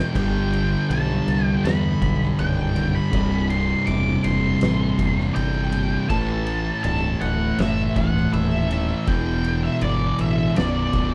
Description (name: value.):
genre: stoner and doom metal.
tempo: 81 BPM.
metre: 4/4.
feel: straight.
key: unclear.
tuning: A4 = 440 Hz.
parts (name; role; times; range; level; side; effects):
octave-fuzz lead guitar; melody; 0.0-11.1 s; D5 to D6; -30 LUFS; equal; wah, distortion, slapback echo.
thick fuzz guitar; riff; 0.0-11.1 s; B1 to A3; -27 LUFS; equal; distortion.
thick fuzz guitar; riff; 0.0-11.1 s; B1 to A3; -27 LUFS; equal; distortion.
growling fingered electric bass; bass; 0.2-11.1 s; B0 to E2; -27 LUFS; equal; overdrive.
oversized low-tuned drum kit; drums; 0.2-11.1 s; crash cymbal, kick drum, ride cymbal, snare drum; -31 LUFS; equal; none.
room: little or no reverb.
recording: dry, close 1970s-style studio recording.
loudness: -22 LUFS.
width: mono.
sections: 0.0-11.1 A section.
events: drum fill 0.0.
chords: 0.2 G; 3.1 C; 6.1 Am; 9.1 Em; 10.6 Bm.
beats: | 0.15 0.90 1.64 2.38 | 3.13 3.87 4.62 5.36 | 6.10 6.85 7.59 8.33 | 9.07 9.82 10.56.